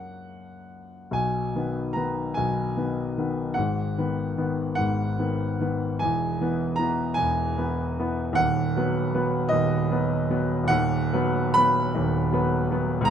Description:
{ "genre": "classical, romantic nocturne for solo piano", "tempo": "50 BPM (dotted quarters)", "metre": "6/8", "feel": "uneven beats, rubato", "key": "B major", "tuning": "A4 = 440 Hz", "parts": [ { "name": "clear concert grand piano", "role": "solo", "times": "0.0-13.1 s", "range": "D#1 to B5", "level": "-23 LUFS", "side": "equal", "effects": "none" } ], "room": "moderate large studio reverb, RT60 1.2 s", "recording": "none", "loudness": "-22 LUFS", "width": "side -8 dB against mid", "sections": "0.0-1.2 A section; 1.2-13.1 B section", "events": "none", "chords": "0.0 F#; 1.2 B; 3.6 G#m7; 6.0 E; 8.4 B/D#" }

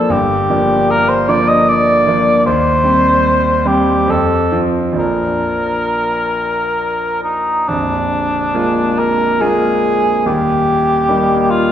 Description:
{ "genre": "classical, romantic duo for cor anglais and grand piano", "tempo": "65-78 BPM", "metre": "3/4", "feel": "rubato", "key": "Bb major", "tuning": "A4 = 440 Hz", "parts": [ { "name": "dark cor anglais", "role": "melody", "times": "0.0-11.7 s", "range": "D4 to Eb5", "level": "-14 LUFS", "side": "equal", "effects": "none" }, { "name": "clear concert grand piano", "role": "accompaniment", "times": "0.0-11.7 s", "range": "Bb0 to F4", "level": "-16 LUFS", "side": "equal", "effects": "none" } ], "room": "wet concert hall reverb, RT60 1.9 s", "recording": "recorded in a church or concert hall", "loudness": "-12 LUFS", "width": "side -10 dB against mid", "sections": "0.0-7.7 A section; 7.7-11.7 B section", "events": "none", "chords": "0.1 Gm7; 2.5 Cm/Eb; 4.1 F; 5.0 Bb; 7.7 Bb7; 10.3 Eb" }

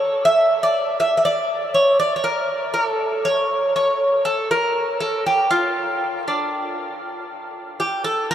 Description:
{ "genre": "greek folk", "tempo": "119 BPM", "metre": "4/4", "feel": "straight", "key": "D harmonic minor", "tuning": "A4 = 441 Hz", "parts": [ { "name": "Greek bouzouki", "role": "solo", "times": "0.0-8.3 s", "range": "D4 to E5", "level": "-18 LUFS", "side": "equal", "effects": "none" } ], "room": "wet huge ambient reverb, RT60 9.1 s", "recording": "in a vast, echoing space", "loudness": "-17 LUFS", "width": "side -10 dB against mid", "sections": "0.0-7.3 A section; 7.3-8.3 B section", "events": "none", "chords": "none" }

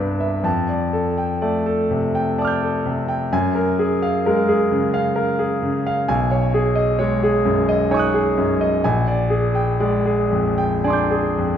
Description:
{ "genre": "classical, impressionist solo piano", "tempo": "64 BPM", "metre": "3/4", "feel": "uneven beats, rubato", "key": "unclear", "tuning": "A4 = 440 Hz", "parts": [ { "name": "clear concert grand piano", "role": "solo", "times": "0.0-11.6 s", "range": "Bb1 to G6", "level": "-17 LUFS", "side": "equal", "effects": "none" } ], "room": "wet recital hall reverb, RT60 1.4 s", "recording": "minimal, uncompressed stereo recording", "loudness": "-17 LUFS", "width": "side -9 dB against mid", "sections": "0.0-11.6 A section", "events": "none", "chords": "0.4 F69; 3.3 Gbmaj9; 6.1 B69; 8.8 Bb13" }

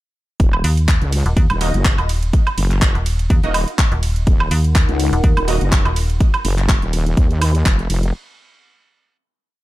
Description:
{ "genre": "bass house", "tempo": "124 BPM", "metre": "4/4", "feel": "swing 55% on 16ths", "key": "Eb minor", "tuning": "A4 = 440 Hz", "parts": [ { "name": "wobble bass", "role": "bass", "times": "0.4-8.1 s", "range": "Eb1 to Eb2", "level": "-18 LUFS", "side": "equal", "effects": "chorus, sidechain pumping" }, { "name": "electronic kick drum", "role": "drums", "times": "0.4-7.8 s", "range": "none", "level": "-15 LUFS", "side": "equal", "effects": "none" }, { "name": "house drum kit", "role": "drums", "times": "0.4-8.1 s", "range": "handclaps, hi-hat, ride cymbal, woodblock", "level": "-23 LUFS", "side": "right 2 dB", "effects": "none" }, { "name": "metallic FM bass", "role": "bass", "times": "0.6-6.2 s", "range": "Eb1 to Eb2", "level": "-17 LUFS", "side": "equal", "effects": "tube saturation, sidechain pumping" }, { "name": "orchestra-hit-like synth stab", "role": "stabs", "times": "1.6-5.6 s", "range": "Bb3 to Eb5", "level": "-27 LUFS", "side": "right 1 dB", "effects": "built-in reverb, phaser, sidechain pumping, ping-pong delay" }, { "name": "dark analog pad", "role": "sustained chords", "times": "4.7-6.2 s", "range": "Eb4 to Gb5", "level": "-26 LUFS", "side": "left 3 dB", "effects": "chorus, phaser, sidechain pumping" } ], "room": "little or no reverb", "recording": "dark, warm production", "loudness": "-14 LUFS", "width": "side -17 dB against mid", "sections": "0.4-8.1 drop", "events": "drop 0.4-8.1", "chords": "0.4 Ebm" }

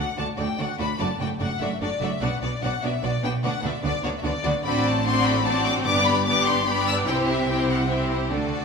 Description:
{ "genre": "quick classical-period movement for string orchestra", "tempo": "148 BPM", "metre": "3/4", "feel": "straight", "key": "unclear", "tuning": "A4 = 439 Hz", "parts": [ { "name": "warm studio violin section", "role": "melody", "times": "0.0-8.6 s", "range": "C5 to E6", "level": "-26 LUFS", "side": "left 6 dB", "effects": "none" }, { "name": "clear studio violin section", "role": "second line", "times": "0.0-8.6 s", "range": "F#4 to D5", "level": "-28 LUFS", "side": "left 1 dB", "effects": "none" }, { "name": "warm studio viola section", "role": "accompaniment", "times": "0.0-8.6 s", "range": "A3 to E4", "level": "-27 LUFS", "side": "equal", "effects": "none" }, { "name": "dark studio double bass section", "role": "bass", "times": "0.0-8.6 s", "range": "F#1 to D2", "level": "-30 LUFS", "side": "right 4 dB", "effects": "none" }, { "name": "rich studio cello section", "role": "bass", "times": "0.0-8.6 s", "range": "D2 to D3", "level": "-31 LUFS", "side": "right 4 dB", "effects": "none" } ], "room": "wet scoring stage reverb, RT60 1.7 s", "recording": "minimal, uncompressed stereo recording", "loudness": "-21 LUFS", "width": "side -5 dB against mid", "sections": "0.0-8.6 A section", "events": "none", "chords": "0.0 D; 1.0 D/F#; 2.2 Bm; 3.4 Bm/D; 4.6 D7/A; 5.9 G; 7.1 C" }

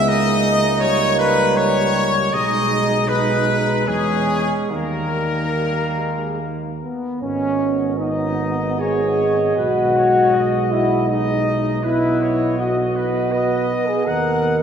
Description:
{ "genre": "classical, hymn-like piece for brass band", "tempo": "69-82 BPM", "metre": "3/4", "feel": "rubato", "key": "G# minor", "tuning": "A4 = 438 Hz", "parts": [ { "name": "clear trumpet section", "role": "melody", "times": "0.0-14.6 s", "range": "G#4 to F#5", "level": "-22 LUFS", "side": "left 3 dB", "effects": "none" }, { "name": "clear flugelhorn", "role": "second line", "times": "0.0-14.6 s", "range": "A#3 to D#5", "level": "-24 LUFS", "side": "right 5 dB", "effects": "none" }, { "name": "warm euphonium", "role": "accompaniment", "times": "0.0-14.6 s", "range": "D#3 to B3", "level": "-24 LUFS", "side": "right 3 dB", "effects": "none" }, { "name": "warm trombone section", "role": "accompaniment", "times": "0.0-14.6 s", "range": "G3 to B4", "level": "-21 LUFS", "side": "left 1 dB", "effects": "none" }, { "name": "mellow tuba", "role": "bass", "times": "0.0-14.6 s", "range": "G#1 to E2", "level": "-25 LUFS", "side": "right 1 dB", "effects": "none" } ], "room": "wet concert hall reverb, RT60 2.5 s", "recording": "heard from further back in the room", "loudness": "-16 LUFS", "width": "side -7 dB against mid", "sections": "0.0-7.2 A section; 7.2-14.6 B section", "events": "none", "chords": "0.1 D#7/C#; 2.3 G#m/B; 3.9 C#m/E; 4.7 D#; 7.2 G#m; 9.6 G#m/B; 11.8 B; 14.1 B/D#" }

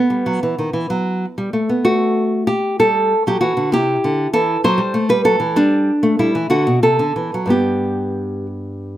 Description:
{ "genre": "classical, baroque-style dance for nylon-string guitar", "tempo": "64 BPM (dotted quarters)", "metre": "6/8", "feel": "uneven beats, rubato", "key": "G major", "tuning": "A4 = 441 Hz", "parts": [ { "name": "nylon-string guitar", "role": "solo", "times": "0.0-9.0 s", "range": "G2 to C5", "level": "-15 LUFS", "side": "equal", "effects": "none" } ], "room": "light reverb", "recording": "none", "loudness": "-15 LUFS", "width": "side -13 dB against mid", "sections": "0.0-9.0 A section", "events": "none", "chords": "0.0 B5; 1.9 N.C.; 2.8 G5; 3.7 C69; 4.7 Am13; 5.6 G5; 6.5 D7; 7.5 G" }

